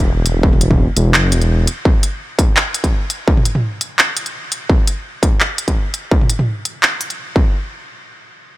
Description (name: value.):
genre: half-time drum and bass.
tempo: 169 BPM.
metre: 4/4.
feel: swing 54% on 16ths, half-time.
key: unclear.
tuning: A4 = 440 Hz.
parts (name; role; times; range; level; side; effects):
dark detuned saw bass; bass; 0.0-1.7 s; E1 to F#1; -14 LUFS; equal; none.
electronic kick drum; drums; 0.0-7.4 s; none; -14 LUFS; equal; distortion, studio ambience.
industrial drum kit; drums; 0.0-7.2 s; handclaps, hi-hat, toms; -18 LUFS; equal; studio ambience.
room: little or no reverb.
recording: none.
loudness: -13 LUFS.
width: side -17 dB against mid.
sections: 0.0-7.5 A section; 7.5-8.6 B section.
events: none.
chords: none.